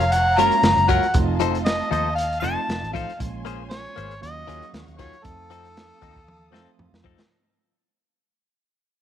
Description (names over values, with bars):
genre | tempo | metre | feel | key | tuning
straight-eighth soul blues | 117 BPM | 4/4 | swing 55% on 16ths | unclear | A4 = 440 Hz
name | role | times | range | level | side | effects
clear harmonica | melody | 0.0-6.8 s | A4 to Bb5 | -22 LUFS | equal | overdrive
dark symphonic string section | sustained chords | 0.0-7.3 s | Db5 to Eb6 | -33 LUFS | left 3 dB | none
direct-recorded clean electric guitar | stabs | 0.0-7.2 s | Eb3 to C5 | -27 LUFS | left 12 dB | phaser
vintage muted fingered electric bass | bass | 0.0-7.1 s | F1 to F2 | -27 LUFS | equal | none
crunchy breakbeat drum kit | drums | 0.0-7.3 s | hi-hat, kick drum, snare drum, toms | -26 LUFS | equal | none
barky tine electric piano | accompaniment | 0.4-7.2 s | F3 to Ab4 | -31 LUFS | right 12 dB | phaser
room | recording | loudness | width
light reverb | 1960s-style stereo with parts hard left and right | -18 LUFS | side -10 dB against mid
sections
0.0-7.3 A section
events
fade-out 0.0-7.3; drum fill 6.3-7.3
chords
0.0 Gbmaj7; 1.1 F7; 3.2 Bbm9; 4.2 Ebm9; 5.3 F7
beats
0.12 0.64 | 1.15 1.66 2.17 2.69 | 3.20 3.71 4.23 4.74 | 5.25 5.76 6.28 6.79